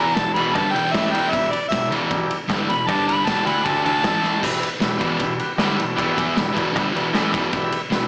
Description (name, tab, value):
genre	garage rock duo or trio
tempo	155 BPM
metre	4/4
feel	straight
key	E minor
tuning	A4 = 440 Hz
part	clear harmonica	melody	0.0-4.4 s	D5 to B5	-24 LUFS	equal	overdrive
part	combo organ	sustained chords	0.0-8.1 s	D4 to F#5	-31 LUFS	equal	none
part	thick fuzz guitar	riff	0.0-8.1 s	E2 to E4	-26 LUFS	equal	distortion
part	bright baby grand piano	bass	0.0-8.1 s	E1 to E2	-28 LUFS	equal	tube saturation
part	raw garage drum kit	drums	0.2-8.0 s	crash cymbal, kick drum, ride cymbal, snare drum	-27 LUFS	equal	none
room	light reverb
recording	small speaker sound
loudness	-21 LUFS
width	mono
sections	0.0-4.4 A section; 4.4-8.1 B section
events	harmonica solo 0.0-4.4; drum fill 4.2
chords	0.0 Em; 2.9 G5; 3.3 Em; 4.0 A5; 4.4 Em